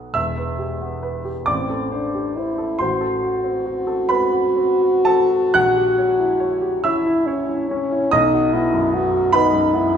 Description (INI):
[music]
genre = classical, romantic duo for French horn and grand piano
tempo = 40-50 BPM (dotted quarters)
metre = 6/8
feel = rubato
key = E minor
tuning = A4 = 440 Hz
[part]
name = clear grand piano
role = accompaniment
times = 0.0-10.0 s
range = E1 to F#6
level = -20 LUFS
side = right 2 dB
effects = none
[part]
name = warm French horn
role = melody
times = 1.5-10.0 s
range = C4 to F#4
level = -18 LUFS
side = left 1 dB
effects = none
[sound]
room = wet recital hall reverb, RT60 1.5 s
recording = minimal, uncompressed stereo recording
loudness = -17 LUFS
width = side -8 dB against mid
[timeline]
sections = 0.1-10.0 A section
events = none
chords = 0.1 Em; 1.5 Am7; 2.8 F#dim/A; 5.6 A#dim7; 8.1 B